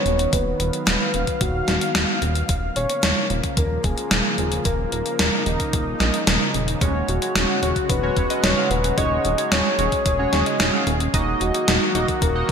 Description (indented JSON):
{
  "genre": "synthwave",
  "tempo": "111 BPM",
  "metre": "4/4",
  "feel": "straight",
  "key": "unclear",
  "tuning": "A4 = 440 Hz",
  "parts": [
    { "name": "soft octave-layered synth lead", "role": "melody", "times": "0.0-12.5 s", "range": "F#4 to Eb5", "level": "-26 LUFS", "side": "left 2 dB", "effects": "chorus, cassette tape, ping-pong delay" },
    { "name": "lush unison pad", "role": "sustained chords", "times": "0.0-12.5 s", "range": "Db3 to F5", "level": "-27 LUFS", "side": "equal", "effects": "chorus, sidechain pumping" },
    { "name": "chorused synth bass", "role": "bass", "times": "0.1-12.5 s", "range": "D#1 to Bb1", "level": "-25 LUFS", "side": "equal", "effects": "tube saturation, sidechain pumping" },
    { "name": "gated 80s digital drum machine", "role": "drums", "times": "0.1-12.5 s", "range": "hi-hat, snare drum", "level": "-22 LUFS", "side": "equal", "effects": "gated reverb, gated reverb snare, overdrive" },
    { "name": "electronic kick drum", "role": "drums", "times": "0.3-12.5 s", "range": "none", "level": "-24 LUFS", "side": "equal", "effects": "overdrive" },
    { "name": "chorused polysynth", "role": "stabs", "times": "6.8-12.5 s", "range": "Ab3 to F5", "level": "-25 LUFS", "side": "right 3 dB", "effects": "ping-pong delay" }
  ],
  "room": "moderate lush hall reverb, RT60 2.1 s",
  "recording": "bright 1980s-style digital production",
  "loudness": "-18 LUFS",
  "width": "side -7 dB against mid",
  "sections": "0.0-12.5 A section",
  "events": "none",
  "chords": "0.0 B/D#; 2.5 Bbm/Eb; 6.8 Dbsus4/Eb; 11.1 Ebm",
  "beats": "| 0.33 0.87 1.41 1.95 | 2.49 3.03 3.57 4.11 | 4.65 5.19 5.73 6.28 | 6.82 7.36 7.90 8.44 | 8.98 9.52 10.06 10.60 | 11.14 11.68 12.22"
}